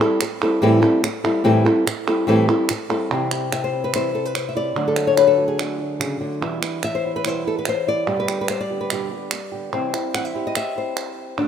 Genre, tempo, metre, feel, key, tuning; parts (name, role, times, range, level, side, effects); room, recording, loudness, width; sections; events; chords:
flamenco; 145 BPM; 4/4; straight; A4 = 440 Hz
flamenco guitar; melody; 0.0-11.5 s; A2 to F#5; -19 LUFS; left 2 dB
flamenco guitar; stabs; 0.0-11.5 s; E2 to G4; -29 LUFS; right 9 dB
palmas hand claps; percussion; 0.0-11.5 s; -27 LUFS; right 6 dB
light reverb, studio ambience; rough home demo mix; -18 LUFS; side -8 dB against mid
0.0-3.1 A section; 3.1-11.5 B section
0.0 Am7; 3.1 C; 4.8 D; 6.4 Em; 8.1 G; 9.7 C